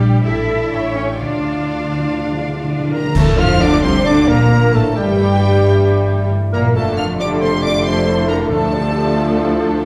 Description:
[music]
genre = classical, dramatic, fast romantic movement for symphony orchestra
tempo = 121-137 BPM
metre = 4/4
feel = rubato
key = D minor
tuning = A4 = 444 Hz
[part]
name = rich symphonic violin section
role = melody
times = 0.0-9.8 s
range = D5 to F6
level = -29 LUFS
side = equal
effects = none
[part]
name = dark symphonic violin section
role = second line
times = 0.0-9.8 s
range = G3 to E5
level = -28 LUFS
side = equal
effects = none
[part]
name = warm symphonic viola section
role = accompaniment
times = 0.0-9.8 s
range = D3 to C#5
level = -25 LUFS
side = equal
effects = none
[part]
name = concert harp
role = arpeggios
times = 0.0-9.8 s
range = A2 to D6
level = -27 LUFS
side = equal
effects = none
[part]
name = bright symphonic cello section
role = bass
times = 0.0-9.8 s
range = D2 to E4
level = -25 LUFS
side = equal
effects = none
[part]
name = warm symphonic double bass section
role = bass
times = 0.0-9.8 s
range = F1 to F2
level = -21 LUFS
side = equal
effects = none
[part]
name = timpani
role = percussion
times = 0.2-3.8, 8.5-9.1 s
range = A2 to D3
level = -26 LUFS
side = equal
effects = none
[part]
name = mellow hollow silver concert flute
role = second line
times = 2.9-9.8 s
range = G4 to F5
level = -27 LUFS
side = equal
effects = none
[part]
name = warm oboe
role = second line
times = 2.9-9.8 s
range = G4 to F5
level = -31 LUFS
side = equal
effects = none
[part]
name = warm trombone section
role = sustained chords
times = 3.1-9.8 s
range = G2 to A3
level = -26 LUFS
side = equal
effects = none
[part]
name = warm clarinet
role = second line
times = 3.2-9.8 s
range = D4 to F5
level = -28 LUFS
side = equal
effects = none
[part]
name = mellow bassoon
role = accompaniment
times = 3.2-9.8 s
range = G3 to F4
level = -26 LUFS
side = equal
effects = none
[part]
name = mellow French horn section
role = sustained chords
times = 3.2-9.8 s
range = G3 to F4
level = -27 LUFS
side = equal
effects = none
[part]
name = clash cymbals and concert bass drum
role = percussion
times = 3.2-4.0 s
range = none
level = -26 LUFS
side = equal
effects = none
[sound]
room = wet recital hall reverb, RT60 1.5 s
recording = heard from further back in the room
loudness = -15 LUFS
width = mono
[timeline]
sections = 0.0-3.2 A section; 3.2-9.8 B section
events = timpani fill 1.2-3.2; band accent 3.2-3.6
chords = 0.2 Dm/A; 0.7 A7; 1.2 Dm; 3.2 Dm/A; 5.0 A7/G; 6.7 Dm/F; 8.5 Dm

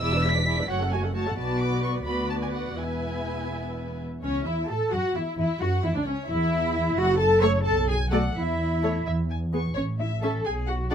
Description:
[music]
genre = quick classical-period movement for string orchestra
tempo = 87 BPM (dotted quarters)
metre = 6/8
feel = straight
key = A major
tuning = A4 = 440 Hz
[part]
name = muted chamber violin section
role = melody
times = 0.0-10.9 s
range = C#4 to B6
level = -33 LUFS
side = equal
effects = none
[part]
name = muted chamber violin section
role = second line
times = 0.0-10.9 s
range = F#4 to C#6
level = -33 LUFS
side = right 1 dB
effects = none
[part]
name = muted chamber viola section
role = accompaniment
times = 0.0-10.9 s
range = A3 to A4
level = -30 LUFS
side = left 1 dB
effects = none
[part]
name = muted chamber cello section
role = bass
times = 0.0-10.9 s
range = D2 to C#5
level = -28 LUFS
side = equal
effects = none
[part]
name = muted chamber double bass section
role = bass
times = 0.0-10.9 s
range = E1 to A2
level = -28 LUFS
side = equal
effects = none
[sound]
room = light reverb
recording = close, detailed microphones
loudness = -23 LUFS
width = side -8 dB against mid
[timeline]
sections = 0.0-4.2 A section; 4.2-10.9 B section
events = none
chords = 0.0 E7; 0.7 F#m; 1.4 Bm; 2.8 E; 4.2 A/C#; 4.9 Esus2; 5.6 C#madd11; 7.0 F#m; 7.7 B7(no3); 8.4 A5/E; 9.1 E; 9.8 A

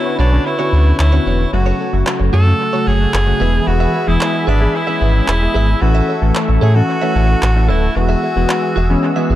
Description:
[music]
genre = dance-pop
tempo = 112 BPM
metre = 4/4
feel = straight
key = unclear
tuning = A4 = 439 Hz
[part]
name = edgy alto saxophone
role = melody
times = 0.0-9.4 s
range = D4 to A4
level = -20 LUFS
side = equal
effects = dub echo
[part]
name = chorused polysynth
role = accompaniment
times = 0.0-9.4 s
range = C#3 to A4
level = -19 LUFS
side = left 2 dB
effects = dub echo
[part]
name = filtered supersaw swell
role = sustained chords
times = 0.0-9.4 s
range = A3 to E6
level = -24 LUFS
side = equal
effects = none
[part]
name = direct-recorded clean electric guitar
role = riff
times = 0.1-9.4 s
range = D4 to E5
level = -26 LUFS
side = right 5 dB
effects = wide subtle chorus, dub echo
[part]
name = sub bass with octave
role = bass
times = 0.2-9.4 s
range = D1 to A2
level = -13 LUFS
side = equal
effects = none
[part]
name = electronic handclaps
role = drums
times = 1.0-8.6 s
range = none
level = -26 LUFS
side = right 1 dB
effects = none
[sound]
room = light reverb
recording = echo-heavy mix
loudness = -12 LUFS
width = side -13 dB against mid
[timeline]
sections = 0.0-9.4 A section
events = break 8.0-9.4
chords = 0.0 Bmadd9; 1.5 F#m; 3.4 E; 5.8 A; 8.0 Eadd9

